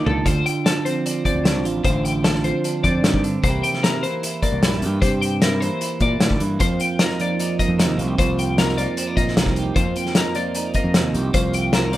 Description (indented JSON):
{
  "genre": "math rock and midwest emo",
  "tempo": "152 BPM",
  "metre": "4/4",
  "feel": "straight",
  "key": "unclear",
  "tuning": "A4 = 440 Hz",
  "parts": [
    { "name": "twelve-string electric guitar", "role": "accompaniment", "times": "0.0-12.0 s", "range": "Eb2 to G4", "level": "-23 LUFS", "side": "right 4 dB", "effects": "none" },
    { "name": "twelve-string electric guitar", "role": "arpeggios", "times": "0.0-12.0 s", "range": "A4 to G5", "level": "-25 LUFS", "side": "left 4 dB", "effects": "analog chorus, plate reverb" },
    { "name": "growling fingered electric bass", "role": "bass", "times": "0.1-12.0 s", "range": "A1 to Bb2", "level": "-23 LUFS", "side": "equal", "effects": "overdrive" },
    { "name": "loose indie drum kit", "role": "drums", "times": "0.1-12.0 s", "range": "hi-hat, kick drum, snare drum, toms", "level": "-21 LUFS", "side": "left 1 dB", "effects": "none" }
  ],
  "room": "light reverb",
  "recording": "rough home demo mix",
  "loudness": "-17 LUFS",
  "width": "side -14 dB against mid",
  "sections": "0.3-12.0 A section",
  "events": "drum fill 0.0",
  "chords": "0.3 Dm7; 3.4 C7; 6.6 F7sus4",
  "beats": "| 0.26 0.66 1.05 1.45 | 1.85 2.25 2.64 3.04 | 3.44 3.83 4.23 4.63 | 5.02 5.42 5.81 6.21 | 6.61 7.00 7.40 7.79 | 8.19 8.58 8.98 9.37 | 9.77 10.16 10.56 10.95 | 11.35 11.74"
}